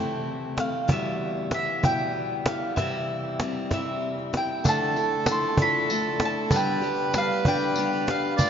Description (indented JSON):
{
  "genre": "acoustic folk duo or small band",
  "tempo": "64 BPM (dotted quarters)",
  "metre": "6/8",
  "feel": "straight",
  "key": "D dorian",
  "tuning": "A4 = 439 Hz",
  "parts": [
    { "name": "mandolin", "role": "melody", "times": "0.0-8.5 s", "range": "E5 to C6", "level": "-28 LUFS", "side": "right 1 dB", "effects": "none" },
    { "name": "picked steel-string acoustic guitar", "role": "accompaniment", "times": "0.0-8.5 s", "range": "E2 to G4", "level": "-29 LUFS", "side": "left 3 dB", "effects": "none" },
    { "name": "cajon", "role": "percussion", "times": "0.6-8.5 s", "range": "none", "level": "-29 LUFS", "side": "right 1 dB", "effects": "none" },
    { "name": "accordion", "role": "second line", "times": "4.6-8.5 s", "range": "A4 to D5", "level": "-28 LUFS", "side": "right 4 dB", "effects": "slapback echo" },
    { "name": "tambourine", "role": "percussion", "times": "4.7-8.5 s", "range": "none", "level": "-38 LUFS", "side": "left 5 dB", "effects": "none" }
  ],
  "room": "wet cathedral reverb, RT60 5.2 s",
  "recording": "in a vast, echoing space, nothing above 7.5 kHz",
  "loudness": "-23 LUFS",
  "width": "side -8 dB against mid",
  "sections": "0.0-4.6 A section; 4.6-8.5 B section",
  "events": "none",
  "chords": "0.0 Am/C; 0.9 Em; 2.8 C; 4.6 Dmadd9; 6.5 G"
}